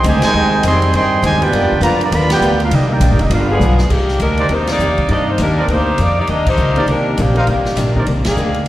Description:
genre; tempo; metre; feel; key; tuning
jazz, big band swing; 202 BPM; 4/4; swing 61% on 8ths; C minor; A4 = 441 Hz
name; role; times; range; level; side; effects
warm trumpet section; melody; 0.0-3.8 s; Bb3 to C6; -16 LUFS; right 1 dB; plate reverb, slapback echo
clear trombone section; second line; 0.0-3.8 s; C3 to G4; -19 LUFS; right 3 dB; plate reverb
picked steel-string acoustic guitar; accompaniment; 0.0-8.6 s; Ab2 to A#4; -23 LUFS; left 4 dB; plate reverb, slapback echo
upright bass; bass; 0.0-8.7 s; Eb1 to G2; -16 LUFS; equal; none
swinging big-band drum kit; drums; 0.0-8.7 s; crash cymbal, hi-hat, kick drum, ride cymbal, snare drum; -24 LUFS; equal; none
clear saxophone section; melody; 3.5-8.7 s; Eb3 to Eb5; -18 LUFS; left 1 dB; plate reverb
warm trumpet section; stabs; 4.4-8.0 s; Eb4 to F5; -23 LUFS; right 1 dB; plate reverb, slapback echo
warm grand piano; accompaniment; 4.5-8.1 s; Eb3 to Bb4; -23 LUFS; equal; plate reverb
room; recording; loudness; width
light reverb; live gig heard through the venue's PA, recital hall reverb; -12 LUFS; side -14 dB against mid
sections
0.0-3.9 A section; 3.9-8.7 B section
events
band accent 0.2, 2.3, 4.6, 6.4, 8.2; drum fill 3.6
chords
0.0 Abmaj7; 1.5 G7#9; 2.7 Cm9; 3.3 G7#9; 3.9 Cm9

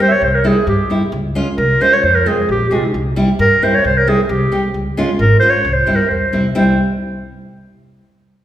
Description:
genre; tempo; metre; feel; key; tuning
klezmer; 132 BPM; 2/4; straight; C phrygian dominant; A4 = 442 Hz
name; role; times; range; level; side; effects
warm clarinet; melody; 0.0-6.8 s; G4 to E5; -14 LUFS; right 1 dB; none
nylon-string guitar; accompaniment; 0.0-6.8 s; G3 to Ab4; -18 LUFS; equal; none
upright bass; bass; 0.2-6.8 s; Ab1 to G2; -19 LUFS; equal; none
room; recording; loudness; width
wet recital hall reverb, RT60 1.7 s; recorded in a church or concert hall; -12 LUFS; side -11 dB against mid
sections
0.0-6.6 A section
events
none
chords
0.0 C; 1.1 Db; 2.0 Fm; 2.9 C; 4.8 Db; 5.7 C

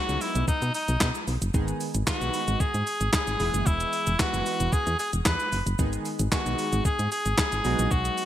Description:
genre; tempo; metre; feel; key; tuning
dance-pop; 113 BPM; 4/4; straight; G# minor; A4 = 440 Hz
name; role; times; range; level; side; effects
warm cor anglais; melody; 0.0-8.3 s; D#4 to B4; -28 LUFS; left 1 dB; ping-pong delay
chorused retro synth keys; accompaniment; 0.0-8.3 s; D#3 to B4; -32 LUFS; right 1 dB; tremolo, sidechain pumping
solid FM bass; bass; 0.1-8.1 s; E1 to B2; -28 LUFS; equal; sidechain pumping
clean 12-bit digital drum machine; drums; 0.1-8.3 s; handclaps, hi-hat, kick drum, shaker, snare drum; -27 LUFS; equal; gated reverb
room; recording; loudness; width
light reverb; bright 1980s-style digital production; -23 LUFS; side -12 dB against mid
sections
0.0-8.3 A section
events
none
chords
0.0 B6; 1.5 G#m; 3.4 E; 5.8 G#m; 7.6 B6

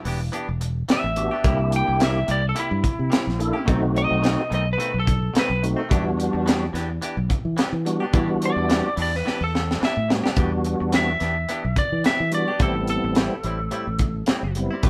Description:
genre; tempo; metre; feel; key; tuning
straight-eighth soul blues; 108 BPM; 4/4; swing 56% on 16ths; E minor; A4 = 439 Hz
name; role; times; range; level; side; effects
muted studio string section; sustained chords; 0.0-9.0 s; G3 to E4; -39 LUFS; equal; none
direct-recorded clean electric guitar; stabs; 0.0-14.9 s; A2 to B4; -34 LUFS; equal; none
fingered electric bass; bass; 0.1-14.9 s; E1 to E3; -28 LUFS; equal; none
tight funk drum kit; drums; 0.1-14.9 s; hi-hat, kick drum, snare drum; -26 LUFS; equal; none
lightly driven lead guitar; melody; 0.9-14.5 s; E4 to G5; -28 LUFS; equal; none
tonewheel organ; accompaniment; 1.2-14.9 s; G3 to A4; -28 LUFS; equal; slow rotary speaker, overdrive, chorus vibrato
room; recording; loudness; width
light reverb; band playing live in one room; -22 LUFS; mono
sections
0.0-10.4 A section; 10.4-14.9 B section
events
lead electric guitar solo 0.0-10.4; drum fill 9.3-10.4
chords
0.0 Em7; 1.4 C7; 3.7 B7b9; 5.9 Em7; 12.6 Am7

